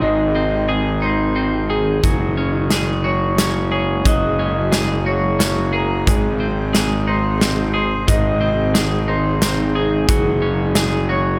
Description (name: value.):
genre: post-rock.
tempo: 89 BPM.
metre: 3/4.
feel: straight.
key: unclear.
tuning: A4 = 441 Hz.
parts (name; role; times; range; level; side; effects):
granular cloud pad; sustained chords; 0.0-11.4 s; C3 to F5; -29 LUFS; equal; none.
electric guitar through a small old amp; arpeggios; 0.0-11.4 s; Ab4 to Eb5; -26 LUFS; equal; tape echo.
twelve-string electric guitar; arpeggios; 0.0-11.4 s; Ab2 to Ab4; -26 LUFS; equal; tape echo.
fuzz picked electric bass; bass; 0.0-11.4 s; Gb1 to Ab1; -22 LUFS; equal; overdrive.
big rock drum kit; drums; 2.0-10.9 s; hi-hat, kick drum, snare drum; -22 LUFS; equal; none.
room: moderate large studio reverb, RT60 1.2 s, small room ambience.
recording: none.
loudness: -18 LUFS.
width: mono.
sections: 0.0-11.4 A section.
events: none.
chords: 0.0 Ab; 2.0 Gbsus2; 6.1 Ab; 10.1 Gbsus2.